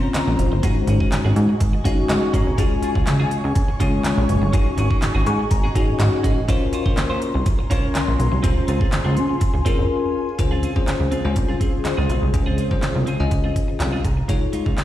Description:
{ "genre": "dance-pop", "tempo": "123 BPM", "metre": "4/4", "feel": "straight", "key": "Db major", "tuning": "A4 = 442 Hz", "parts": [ { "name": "bell-like tine electric piano", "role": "accompaniment", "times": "0.0-14.8 s", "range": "Ab3 to Db6", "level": "-25 LUFS", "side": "left 4 dB", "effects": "phaser, sidechain pumping" }, { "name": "glassy FM pad", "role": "sustained chords", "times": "0.0-14.3 s", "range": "Db3 to Db6", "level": "-28 LUFS", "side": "left 1 dB", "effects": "ensemble chorus, built-in reverb, phaser, sidechain pumping" }, { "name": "semi-hollow electric guitar", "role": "riff", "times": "0.0-14.8 s", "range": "Ab3 to C5", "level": "-30 LUFS", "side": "right 3 dB", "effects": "wide subtle chorus" }, { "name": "plucky analog bass", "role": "bass", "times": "0.0-14.7 s", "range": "Gb1 to Db3", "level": "-20 LUFS", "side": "equal", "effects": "sidechain pumping" }, { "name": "pop drum kit", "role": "drums", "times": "0.1-14.8 s", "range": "handclaps, hi-hat, kick drum, snare drum", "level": "-21 LUFS", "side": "equal", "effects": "none" } ], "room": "little or no reverb", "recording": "played on a big sound system in a bare room, stone room reverb", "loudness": "-17 LUFS", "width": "side -13 dB against mid", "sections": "0.0-10.4 A section; 10.4-14.3 B section", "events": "tine electric piano fill 1.6-2.6, 5.0-6.5, 13.6-14.3; break 9.9-10.4", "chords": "0.0 Bbmadd9; 0.6 Ab7sus4; 2.6 Db; 4.5 Ab7sus4; 6.5 Bbmadd9; 8.4 Dbmaj7; 14.3 Dbadd9", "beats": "0.14 | 0.63 1.12 1.61 2.10 | 2.58 3.07 3.56 4.05 | 4.54 5.02 5.51 6.00 | 6.49 6.97 7.46 7.95 | 8.44 8.93 9.41 9.90 | 10.39 10.88 11.36 11.85 | 12.34 12.83 13.31 13.80 | 14.29 14.78" }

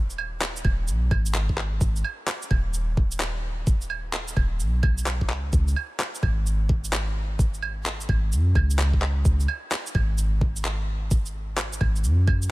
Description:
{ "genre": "future garage", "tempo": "129 BPM", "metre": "4/4", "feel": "swing 64% on 16ths", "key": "unclear", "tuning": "A4 = 440 Hz", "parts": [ { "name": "soft 808-style bass", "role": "bass", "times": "0.0-12.5 s", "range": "D#1 to F#2", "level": "-24 LUFS", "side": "equal", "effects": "sidechain pumping" }, { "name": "electronic shaker, claves and handclaps", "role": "drums", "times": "0.1-12.5 s", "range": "none", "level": "-30 LUFS", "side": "right 1 dB", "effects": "none" }, { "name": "electronic kick drum", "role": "drums", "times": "0.6-12.4 s", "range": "none", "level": "-23 LUFS", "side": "equal", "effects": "none" } ], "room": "digital ambience", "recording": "none", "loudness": "-22 LUFS", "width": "side -20 dB against mid", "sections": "0.0-12.5 A section", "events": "none", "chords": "none", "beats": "0.41 0.88 1.34 | 1.81 2.27 2.74 3.21 | 3.67 4.13 4.60 5.07 | 5.53 6.00 6.46 6.93 | 7.39 7.86 8.32 8.79 | 9.25 9.72 10.18 10.65 | 11.11 11.58 12.04 12.51" }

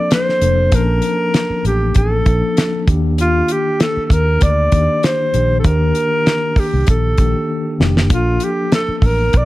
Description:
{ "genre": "lush 1970s-style soul", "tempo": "98 BPM", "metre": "4/4", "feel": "swing 54% on 16ths", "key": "unclear", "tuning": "A4 = 442 Hz", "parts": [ { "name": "breathy alto saxophone", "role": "melody", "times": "0.0-9.4 s", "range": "F4 to D5", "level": "-18 LUFS", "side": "equal", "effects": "slapback echo" }, { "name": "mellow tine electric piano", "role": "accompaniment", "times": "0.0-9.4 s", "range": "Eb3 to A5", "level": "-21 LUFS", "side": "left 3 dB", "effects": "medium stereo tremolo" }, { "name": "damped 70s drum kit", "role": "drums", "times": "0.1-9.4 s", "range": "hi-hat, kick drum, snare drum", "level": "-15 LUFS", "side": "equal", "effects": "none" }, { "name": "vintage muted fingered electric bass", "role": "bass", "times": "0.4-9.4 s", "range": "F1 to Eb2", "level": "-16 LUFS", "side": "equal", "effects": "none" } ], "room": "studio reverb", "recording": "dry, close 1970s-style studio recording", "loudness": "-13 LUFS", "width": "side -17 dB against mid", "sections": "0.0-9.4 A section", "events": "drum fill 7.5-8.1", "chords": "0.0 Bbmaj7; 2.9 Ebmaj7; 8.1 Bbmaj7", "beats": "0.11 | 0.72 1.34 1.95 2.57 | 3.18 3.80 4.41 5.03 | 5.64 6.26 6.87 7.49 | 8.10 8.72 9.33" }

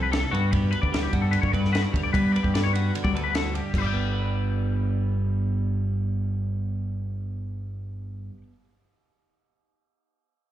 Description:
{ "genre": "math rock and midwest emo", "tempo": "150 BPM", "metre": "4/4", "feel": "straight", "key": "G major", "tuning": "A4 = 440 Hz", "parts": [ { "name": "twelve-string electric guitar", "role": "accompaniment", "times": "0.0-8.6 s", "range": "G2 to B4", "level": "-32 LUFS", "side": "right 5 dB", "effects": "slapback echo" }, { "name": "twangy electric guitar", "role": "arpeggios", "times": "0.0-8.4 s", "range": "F#4 to G5", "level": "-30 LUFS", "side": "left 9 dB", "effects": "analog chorus, slapback echo" }, { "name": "growling fingered electric bass", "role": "bass", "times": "0.0-8.3 s", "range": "G1 to G3", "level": "-25 LUFS", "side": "equal", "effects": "overdrive" }, { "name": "compact cocktail drum kit", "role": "drums", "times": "0.1-3.8 s", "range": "crash cymbal, kick drum, ride cymbal, snare drum", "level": "-28 LUFS", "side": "equal", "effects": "none" } ], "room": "little or no reverb", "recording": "live gig heard through the venue's PA, club reverb", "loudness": "-23 LUFS", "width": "side -12 dB against mid", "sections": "0.0-3.7 A section; 3.7-6.9 B section", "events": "none", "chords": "0.3 Gmaj7; 3.7 G", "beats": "0.13 | 0.53 0.93 1.33 1.73 | 2.13 2.53 2.93 3.33 | 3.73 4.13 4.54 4.94 | 5.34 5.74 6.14 6.54" }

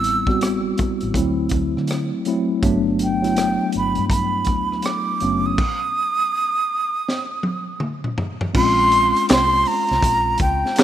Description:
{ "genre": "R&B, neo-soul", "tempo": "81 BPM", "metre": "4/4", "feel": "swing 63% on 16ths", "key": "unclear", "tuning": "A4 = 440 Hz", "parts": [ { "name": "breathy jazz flute", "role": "melody", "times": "0.0-10.8 s", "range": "G5 to E6", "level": "-20 LUFS", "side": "right 1 dB", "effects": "none" }, { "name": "mellow tine electric piano", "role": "accompaniment", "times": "0.0-10.8 s", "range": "F#3 to G4", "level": "-22 LUFS", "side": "equal", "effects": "medium stereo tremolo" }, { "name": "vintage muted fingered electric bass", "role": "bass", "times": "0.0-10.6 s", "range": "F#1 to D3", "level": "-26 LUFS", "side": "equal", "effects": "none" }, { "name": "crunchy breakbeat drum kit", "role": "drums", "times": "0.0-10.8 s", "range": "crash cymbal, handclaps, hi-hat, kick drum, rim click, snare drum, toms", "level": "-22 LUFS", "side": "equal", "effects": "none" } ], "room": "light reverb, small room ambience", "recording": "rough home demo mix", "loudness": "-17 LUFS", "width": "side -11 dB against mid", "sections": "0.0-8.6 A section; 8.6-10.8 B section", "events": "stop 5.6-8.6; drum fill 7.1-8.6", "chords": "0.0 Am7; 1.1 D7; 2.6 Gmaj9; 5.6 N.C.; 8.6 Bbm9", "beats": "0.40 1.15 1.89 | 2.63 3.37 4.11 4.85 | 5.59 6.33 7.07 7.81 | 8.55 9.29 10.03 10.78" }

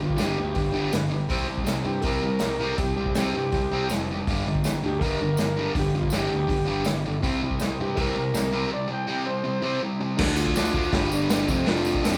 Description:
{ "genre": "garage rock duo or trio", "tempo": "162 BPM", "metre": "4/4", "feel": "straight", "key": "G mixolydian", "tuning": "A4 = 441 Hz", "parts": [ { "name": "overdriven combo organ", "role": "sustained chords", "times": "0.0-12.2 s", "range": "C4 to D5", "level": "-40 LUFS", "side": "equal", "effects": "none" }, { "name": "fuzz guitar", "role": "riff", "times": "0.0-12.2 s", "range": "F2 to D4", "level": "-29 LUFS", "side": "equal", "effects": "distortion" }, { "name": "fuzz picked electric bass", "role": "bass", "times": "0.0-12.2 s", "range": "F1 to G2", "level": "-34 LUFS", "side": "equal", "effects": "overdrive" }, { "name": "overdriven combo organ", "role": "melody", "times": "0.1-12.2 s", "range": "C4 to G5", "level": "-31 LUFS", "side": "equal", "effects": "none" }, { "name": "vintage drum kit", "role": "drums", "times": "0.1-12.1 s", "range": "crash cymbal, hi-hat, kick drum, snare drum", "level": "-31 LUFS", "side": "equal", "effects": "none" }, { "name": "tambourine", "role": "percussion", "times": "0.2-12.2 s", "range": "none", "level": "-42 LUFS", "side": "equal", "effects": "none" } ], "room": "light reverb", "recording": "band playing live in one room", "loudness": "-25 LUFS", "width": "mono", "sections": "0.0-10.2 A section; 10.2-12.2 B section", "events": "none", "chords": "0.0 G; 1.3 C; 4.3 G; 7.2 C; 10.2 D; 10.9 G; 11.5 F", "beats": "0.19 0.56 0.94 | 1.30 1.68 2.05 2.42 | 2.79 3.16 3.53 3.90 | 4.27 4.64 5.01 5.38 | 5.75 6.12 6.49 6.86 | 7.23 7.60 7.97 8.34 | 8.71 9.08 9.46 9.82 | 10.20 10.56 10.93 11.30 | 11.67 12.04" }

